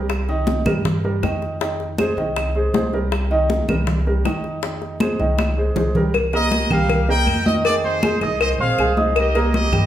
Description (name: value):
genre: latin, salsa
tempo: 159 BPM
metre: 4/4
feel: straight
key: C minor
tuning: A4 = 443 Hz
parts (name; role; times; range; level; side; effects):
- warm grand piano; accompaniment; 0.0-9.9 s; Eb3 to Eb6; -22 LUFS; right 2 dB; none
- upright bass; bass; 0.0-9.9 s; Bb1 to G2; -23 LUFS; equal; none
- bongos and cowbell; percussion; 0.1-9.9 s; none; -26 LUFS; left 5 dB; none
- claves; percussion; 0.1-9.9 s; none; -31 LUFS; right 3 dB; none
- congas; percussion; 0.1-9.9 s; none; -24 LUFS; equal; none
- bright trumpet section; melody; 6.3-9.9 s; Eb4 to G5; -22 LUFS; equal; plate reverb
room: wet large studio reverb, RT60 0.9 s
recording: heard from further back in the room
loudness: -17 LUFS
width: side -11 dB against mid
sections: 0.0-6.1 A section; 6.1-9.9 B section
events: drum fill 5.4-6.1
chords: 0.1 Cm7; 1.6 Fm7; 3.1 Cm7; 4.6 Fm7; 6.1 Cm7; 7.7 Fm7; 9.2 Cm7